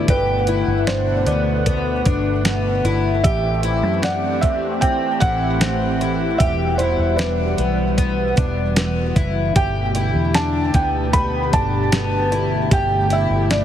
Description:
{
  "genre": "dream pop",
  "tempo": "76 BPM",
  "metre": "4/4",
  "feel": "straight",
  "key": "G major",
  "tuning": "A4 = 441 Hz",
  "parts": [
    { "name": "felt-muted upright piano", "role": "melody", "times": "0.0-13.6 s", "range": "B4 to B5", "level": "-23 LUFS", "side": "right 2 dB", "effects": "digital delay, shimmer reverb" },
    { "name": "lush unison pad", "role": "sustained chords", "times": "0.0-13.6 s", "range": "B2 to F#5", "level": "-24 LUFS", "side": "right 1 dB", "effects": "chorus, phaser, shimmer reverb" },
    { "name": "fingerpicked twelve-string acoustic guitar", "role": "arpeggios", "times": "0.0-13.6 s", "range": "B3 to G4", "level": "-23 LUFS", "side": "left 4 dB", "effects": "wide subtle chorus, digital delay, shimmer reverb" },
    { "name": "vintage muted fingered electric bass", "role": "bass", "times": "0.0-13.6 s", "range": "E1 to F#2", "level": "-22 LUFS", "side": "equal", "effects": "none" },
    { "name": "crisp 8-bit digital drum machine", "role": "drums", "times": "0.1-13.6 s", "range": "hi-hat, kick drum, snare drum", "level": "-20 LUFS", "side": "equal", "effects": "none" }
  ],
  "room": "moderate huge ambient reverb, RT60 4.0 s",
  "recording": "heavily compressed radio sound, multiband compression",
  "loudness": "-16 LUFS",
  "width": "side -10 dB against mid",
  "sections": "0.0-13.6 A section",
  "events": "none",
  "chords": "0.0 Gadd9; 3.2 Am7; 6.4 Emadd9; 9.6 Gadd9"
}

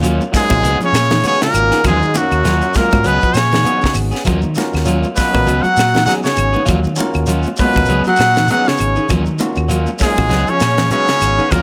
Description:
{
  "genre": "afrobeat",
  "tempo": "99 BPM",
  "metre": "4/4",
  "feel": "swing 56% on 16ths",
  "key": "unclear",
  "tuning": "A4 = 440 Hz",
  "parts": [
    { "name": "barky tine electric piano", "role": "accompaniment", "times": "0.0-11.4 s", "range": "Gb3 to F5", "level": "-27 LUFS", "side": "equal", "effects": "none" },
    { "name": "semi-hollow electric guitar", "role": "arpeggios", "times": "0.0-11.6 s", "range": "Db3 to Ab3", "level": "-26 LUFS", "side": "equal", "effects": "none" },
    { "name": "electric guitar at the edge of break-up", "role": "stabs", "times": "0.0-11.6 s", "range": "Gb3 to Ab4", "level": "-25 LUFS", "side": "equal", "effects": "spring reverb, tape echo" },
    { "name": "fingered electric bass", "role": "bass", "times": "0.0-11.6 s", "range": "Ab1 to Eb3", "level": "-20 LUFS", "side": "equal", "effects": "none" },
    { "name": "tight funk drum kit", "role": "drums", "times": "0.0-11.6 s", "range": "hi-hat, kick drum, snare drum", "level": "-22 LUFS", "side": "equal", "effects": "none" },
    { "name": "shekere", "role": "percussion", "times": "0.0-11.6 s", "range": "none", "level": "-29 LUFS", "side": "equal", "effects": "none" },
    { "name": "congas", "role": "percussion", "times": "0.2-11.6 s", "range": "none", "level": "-26 LUFS", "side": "equal", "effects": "none" },
    { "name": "raspy baritone saxophone", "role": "second line", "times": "0.3-11.6 s", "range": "Gb2 to Gb3", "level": "-25 LUFS", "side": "equal", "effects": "none" },
    { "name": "bright trumpet", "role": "melody", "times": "0.4-11.6 s", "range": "Gb4 to Gb5", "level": "-18 LUFS", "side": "equal", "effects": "none" },
    { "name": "brilliant trombone", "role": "second line", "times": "0.4-11.6 s", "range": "Gb3 to Gb4", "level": "-26 LUFS", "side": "equal", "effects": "none" },
    { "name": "claves", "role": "percussion", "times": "0.5-11.6 s", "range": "none", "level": "-31 LUFS", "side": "equal", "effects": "none" }
  ],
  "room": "moderate studio reverb, RT60 0.6 s",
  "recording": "none",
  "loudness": "-14 LUFS",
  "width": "mono",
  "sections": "0.0-11.6 A section",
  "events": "none",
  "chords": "0.0 Ebm9; 0.6 Db7sus4; 1.8 Ebm9; 3.1 Db7sus4; 4.3 Ebm9; 5.5 Db7sus4; 6.7 Ebm9; 7.9 Db7sus4; 9.1 Ebm9; 10.3 Db7sus4"
}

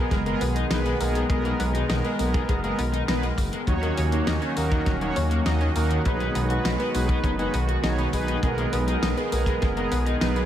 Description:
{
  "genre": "synthwave",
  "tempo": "101 BPM",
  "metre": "4/4",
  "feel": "straight",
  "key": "G# minor",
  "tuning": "A4 = 439 Hz",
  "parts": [
    { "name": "warm analog pad", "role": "sustained chords", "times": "0.0-10.5 s", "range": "D#3 to A#4", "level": "-30 LUFS", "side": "right 1 dB", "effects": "chorus, sidechain pumping" },
    { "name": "raw garage guitar", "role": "riff", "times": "0.0-10.4 s", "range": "D#3 to F#4", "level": "-33 LUFS", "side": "left 5 dB", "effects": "overdrive, wide subtle chorus, ping-pong delay" },
    { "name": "mellow synth brass", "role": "stabs", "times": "0.0-10.5 s", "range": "B3 to D#5", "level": "-29 LUFS", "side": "right 2 dB", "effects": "chorus, ping-pong delay" },
    { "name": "dark detuned saw bass", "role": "bass", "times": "0.0-10.4 s", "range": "D#1 to D#2", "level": "-26 LUFS", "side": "equal", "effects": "sidechain pumping" },
    { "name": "analog pluck", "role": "arpeggios", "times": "0.1-10.5 s", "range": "F#3 to D#4", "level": "-33 LUFS", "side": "left 4 dB", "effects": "chorus, cassette tape, ping-pong delay" },
    { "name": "kick drum", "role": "drums", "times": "0.1-9.7 s", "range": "none", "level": "-26 LUFS", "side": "equal", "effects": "none" },
    { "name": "pop drum kit", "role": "drums", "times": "0.1-10.5 s", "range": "hi-hat, snare drum", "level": "-32 LUFS", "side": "equal", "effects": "none" }
  ],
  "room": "light reverb",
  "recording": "none",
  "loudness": "-22 LUFS",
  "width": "side -11 dB against mid",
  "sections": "0.0-10.5 A section",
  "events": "none",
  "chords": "0.0 G#madd9; 3.7 D#m7; 6.1 B6; 8.4 G#madd9"
}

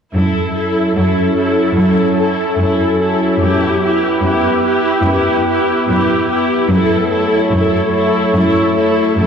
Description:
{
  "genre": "cinematic",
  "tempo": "73 BPM",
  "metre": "4/4",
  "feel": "straight",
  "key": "F# phrygian",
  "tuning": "A4 = 440 Hz",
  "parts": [
    { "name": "warm symphonic viola section", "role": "accompaniment", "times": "0.1-9.3 s", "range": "E4 to A4", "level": "-16 LUFS", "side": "left 1 dB", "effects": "none" },
    { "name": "warbly tape-like pad", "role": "sustained chords", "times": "0.5-9.3 s", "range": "F#3 to C#5", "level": "-16 LUFS", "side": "equal", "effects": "chorus, built-in reverb" },
    { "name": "rich symphonic cello section", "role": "bass", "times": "0.1-9.3 s", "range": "F#2", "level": "-18 LUFS", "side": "right 1 dB", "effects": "none" }
  ],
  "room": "wet scoring stage reverb, RT60 1.5 s",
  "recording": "heard from further back in the room",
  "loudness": "-12 LUFS",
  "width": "side -7 dB against mid",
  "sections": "0.1-9.3 A section",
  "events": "none",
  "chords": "0.1 F#m7; 3.4 Em/F#; 6.7 F#m7"
}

